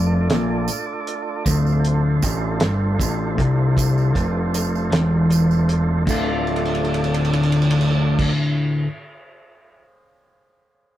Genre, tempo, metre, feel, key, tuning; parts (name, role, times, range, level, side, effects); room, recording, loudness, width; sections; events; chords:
psychedelic rock; 52 BPM (dotted quarters); 6/8; straight; D minor; A4 = 441 Hz
tonewheel organ; sustained chords; 0.0-8.3 s; F3 to D5; -27 LUFS; right 4 dB; slow rotary speaker
electric guitar at the edge of break-up; riff; 0.0-8.9 s; D2 to F4; -18 LUFS; left 1 dB; phaser
overdriven picked electric bass; bass; 0.0-8.3 s; D1 to C2; -26 LUFS; right 1 dB
cloth-damped thuddy drum kit; drums; 0.3-9.8 s; crash cymbal, hi-hat, kick drum, ride cymbal, snare drum; -24 LUFS; right 1 dB
tambourine; percussion; 0.3-8.3 s; -32 LUFS; right 8 dB
moderate studio reverb, RT60 0.6 s; rough rehearsal-room recording, tube saturation; -17 LUFS; side -13 dB against mid
0.0-6.1 A section; 6.1-8.4 B section
drum fill 6.5-8.2
0.0 Dm